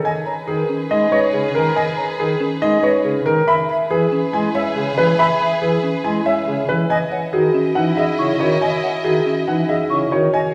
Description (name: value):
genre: classical, minimalist pattern music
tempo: 140 BPM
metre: 4/4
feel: straight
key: unclear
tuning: A4 = 443 Hz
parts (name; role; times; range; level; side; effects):
- clear grand piano; melody; 0.0-10.5 s; G#4 to B5; -22 LUFS; equal; none
- rich symphonic violin section; sustained chords; 0.0-10.5 s; E4 to D#5; -30 LUFS; equal; none
- concert flute; arpeggios; 0.0-10.4 s; D#5 to C#6; -27 LUFS; equal; none
- marimba with soft mallets; arpeggios; 0.0-10.4 s; C#4 to E5; -23 LUFS; equal; none
- pipe organ, cornet; accompaniment; 0.5-10.3 s; C#3 to G#3; -25 LUFS; equal; none
room: wet recital hall reverb, RT60 1.7 s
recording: heard from further back in the room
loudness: -18 LUFS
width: mono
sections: 0.0-10.5 A section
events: none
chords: 0.0 G#madd9; 3.5 E; 6.9 C#madd9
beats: | 0.05 0.47 0.90 1.33 | 1.76 2.19 2.62 3.05 | 3.48 3.90 4.33 4.76 | 5.19 5.62 6.05 6.47 | 6.90 7.33 7.76 8.19 | 8.62 9.05 9.47 9.90 | 10.33